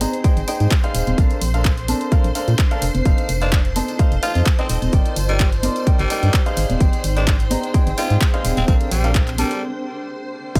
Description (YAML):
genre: piano house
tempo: 128 BPM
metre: 4/4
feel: swing 54% on 16ths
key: unclear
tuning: A4 = 435 Hz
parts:
  - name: string machine, violins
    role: sustained chords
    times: 0.0-10.6 s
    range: G4 to C6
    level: -33 LUFS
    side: equal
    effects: ensemble chorus, sidechain pumping
  - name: warm baby grand piano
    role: riff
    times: 0.0-10.6 s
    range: D4 to C6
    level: -28 LUFS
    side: equal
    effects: sidechain pumping
  - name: organ-like FM bass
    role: bass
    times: 0.0-10.6 s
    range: Eb1 to Bb2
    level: -22 LUFS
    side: equal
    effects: sidechain pumping
  - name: house drum kit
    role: drums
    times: 0.0-10.6 s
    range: crash cymbal, handclaps, hi-hat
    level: -29 LUFS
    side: equal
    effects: none
  - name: congas and tambourine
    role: percussion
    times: 0.0-9.6 s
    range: none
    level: -31 LUFS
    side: equal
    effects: none
  - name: granular cloud pad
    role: texture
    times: 0.0-10.6 s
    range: C4 to A5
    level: -35 LUFS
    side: equal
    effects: none
  - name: electronic kick drum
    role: drums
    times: 0.2-10.6 s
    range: none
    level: -19 LUFS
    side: equal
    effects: none
  - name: breathy tenor saxophone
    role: melody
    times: 3.4-9.6 s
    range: G3 to F4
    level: -30 LUFS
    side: equal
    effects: dub echo
room: digital ambience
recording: none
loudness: -18 LUFS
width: mono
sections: 0.0-10.6 A section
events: break 9.6-10.6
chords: 0.0 Abmaj7; 1.2 Bbmaj7; 3.1 F7; 4.9 Ebmaj7/G; 6.6 Abmaj7; 8.7 Bbmaj7